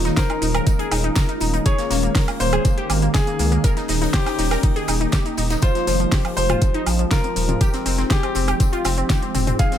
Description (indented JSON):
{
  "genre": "progressive house",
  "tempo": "121 BPM",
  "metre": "4/4",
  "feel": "straight",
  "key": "unclear",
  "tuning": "A4 = 441 Hz",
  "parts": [
    { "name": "clear baby grand piano", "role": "melody", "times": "0.0-9.8 s", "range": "G4 to F5", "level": "-27 LUFS", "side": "left 2 dB", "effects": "ping-pong delay" },
    { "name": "shimmering ambient pad", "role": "sustained chords", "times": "0.0-9.8 s", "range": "Eb3 to G4", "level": "-26 LUFS", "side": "equal", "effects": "chorus, built-in reverb, phaser, sidechain pumping" },
    { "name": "round analog bass", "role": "bass", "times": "0.0-9.5 s", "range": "Eb1 to Db2", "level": "-22 LUFS", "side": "equal", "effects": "sidechain pumping" },
    { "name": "glassy wavetable pluck", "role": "arpeggios", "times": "0.1-9.8 s", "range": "F3 to C5", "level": "-25 LUFS", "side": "left 1 dB", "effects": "chorus, sidechain pumping, ping-pong delay" },
    { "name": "deep house drum kit", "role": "drums", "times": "0.1-9.8 s", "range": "hi-hat, shaker, snare drum, woodblock", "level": "-25 LUFS", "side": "right 1 dB", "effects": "overdrive" },
    { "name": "modern studio drum kit", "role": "drums", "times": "0.1-9.8 s", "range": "hi-hat, snare drum, tambourine", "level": "-35 LUFS", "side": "left 4 dB", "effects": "high-pass filter on hats, high-pass filter on snare, high-pass filter on perc, high-pass filter on room" },
    { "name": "electronic kick drum", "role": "drums", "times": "0.2-9.7 s", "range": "none", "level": "-19 LUFS", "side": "equal", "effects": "overdrive" },
    { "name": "electronic toms and congas", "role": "percussion", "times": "6.5-9.6 s", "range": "none", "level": "-28 LUFS", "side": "left 1 dB", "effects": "sidechain pumping on toms, sidechain pumping on perc" }
  ],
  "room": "small room ambience",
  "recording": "none",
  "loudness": "-17 LUFS",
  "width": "side -10 dB against mid",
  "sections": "0.0-9.8 A section",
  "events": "none",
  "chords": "0.0 Eb7sus4; 5.6 Fm9"
}